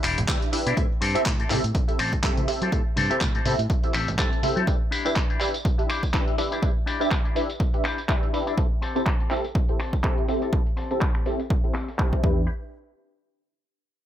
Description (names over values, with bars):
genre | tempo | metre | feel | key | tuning
filtered disco house | 123 BPM | 4/4 | swing 56% on 16ths | unclear | A4 = 440 Hz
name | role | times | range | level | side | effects
funky polysynth comp | accompaniment | 0.0-12.4 s | C4 to E5 | -28 LUFS | equal | chorus, phaser, sidechain pumping, low-pass filter
electric guitar with an envelope filter | riff | 0.0-12.5 s | C4 to A5 | -30 LUFS | left 4 dB | sidechain pumping, low-pass filter
fingered electric bass | bass | 0.0-4.6, 12.2-12.5 s | E1 to F#3 | -28 LUFS | equal | sidechain pumping, low-pass filter
dusty soul sampler-style drum kit | drums | 0.0-12.2 s | finger snaps, handclaps, hi-hat, tambourine | -31 LUFS | equal | sidechain pumping on hats, low-pass filter on hats, small room ambience, low-pass filter on snare, sidechain pumping on cymbals, low-pass filter on cymbals, sidechain pumping on perc, low-pass filter on perc
egg shaker and congas | percussion | 0.0-4.7 s | none | -32 LUFS | right 1 dB | sidechain pumping on perc, low-pass filter on perc
electronic kick drum | drums | 0.3-12.3 s | none | -24 LUFS | equal | small room ambience
room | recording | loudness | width
little or no reverb | none | -22 LUFS | side -11 dB against mid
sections
0.0-12.5 A section; 12.5-14.1 B section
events
filter sweep on drum 0.0-12.5; filter sweep 0.0-12.5; clean electric guitar fill 3.9-4.7, 11.7-12.5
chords
0.0 Em7; 0.8 Am7; 4.7 Em7; 8.6 Am7; 12.2 Em7; 12.5 N.C.